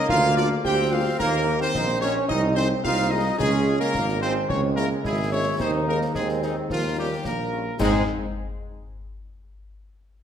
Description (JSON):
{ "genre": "military-style march for wind band", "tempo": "109 BPM", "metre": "2/4", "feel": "straight", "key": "Ab major", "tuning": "A4 = 440 Hz", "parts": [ { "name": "mellow trumpet section", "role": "melody", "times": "0.0-8.0 s", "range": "Eb4 to G5", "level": "-28 LUFS", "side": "left 1 dB", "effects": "none" }, { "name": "mellow trombone section", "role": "sustained chords", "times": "0.0-8.0 s", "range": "G3 to Fb4", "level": "-29 LUFS", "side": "equal", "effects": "none" }, { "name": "warm euphonium", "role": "second line", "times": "0.1-8.0 s", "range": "Eb3 to G4", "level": "-27 LUFS", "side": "right 3 dB", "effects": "none" }, { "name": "mellow tuba", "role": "bass", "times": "0.1-8.0 s", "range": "Ab1 to Ab2", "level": "-25 LUFS", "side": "right 1 dB", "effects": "none" }, { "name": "concert bass drum, concert snare drum and clash cymbals", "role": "drums", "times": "0.1-8.1 s", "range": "none", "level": "-34 LUFS", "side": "left 2 dB", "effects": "none" }, { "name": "warm French horn section", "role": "accompaniment", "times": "0.4-8.0 s", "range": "G3 to Ab4", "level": "-33 LUFS", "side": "left 6 dB", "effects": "none" } ], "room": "wet recital hall reverb, RT60 1.5 s", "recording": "none", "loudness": "-21 LUFS", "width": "side -8 dB against mid", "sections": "0.0-7.8 A section; 7.8-8.9 B section", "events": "none", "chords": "0.1 Bb7/D; 1.2 Eb; 2.3 Ab/C; 3.4 Db; 4.5 Dbm; 5.6 Ab/Eb; 6.7 Eb9; 7.8 Ab", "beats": "| 0.09 0.64 | 1.19 1.75 | 2.30 2.85 | 3.40 3.95 | 4.50 5.05 | 5.60 6.15 | 6.70 7.25 | 7.80" }